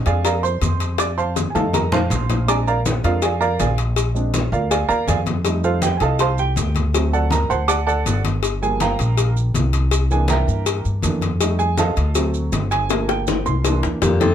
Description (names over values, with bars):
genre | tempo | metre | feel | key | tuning
Afro-Cuban jazz | 161 BPM | 4/4 | straight | F mixolydian | A4 = 439 Hz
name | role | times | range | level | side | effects
warm baby grand piano | accompaniment | 0.0-14.3 s | E3 to D6 | -21 LUFS | right 4 dB | none
upright bass | bass | 0.1-14.3 s | G1 to G2 | -20 LUFS | equal | none
congas | percussion | 0.1-14.3 s | none | -26 LUFS | left 2 dB | none
cowbell and bongos | percussion | 0.1-14.3 s | none | -25 LUFS | left 8 dB | none
maracas | percussion | 0.1-14.3 s | none | -32 LUFS | right 8 dB | none
vibraphone with soft mallets | melody | 14.0-14.3 s | G4 to A4 | -18 LUFS | equal | none
warm baritone saxophone | second line | 14.0-14.3 s | Bb2 to C3 | -23 LUFS | left 5 dB | none
room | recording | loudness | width
light reverb | close, detailed microphones | -17 LUFS | side -9 dB against mid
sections
0.0-14.3 A section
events
grand piano solo 0.0-14.3; drum fill 1.0-2.5, 12.9-14.3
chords
0.0 Bb7; 1.0 F7; 2.5 Bb7; 5.5 F7; 6.9 D7; 8.4 Gm7; 9.9 C7; 11.4 F7; 12.2 D7; 12.9 Gm7; 13.6 C7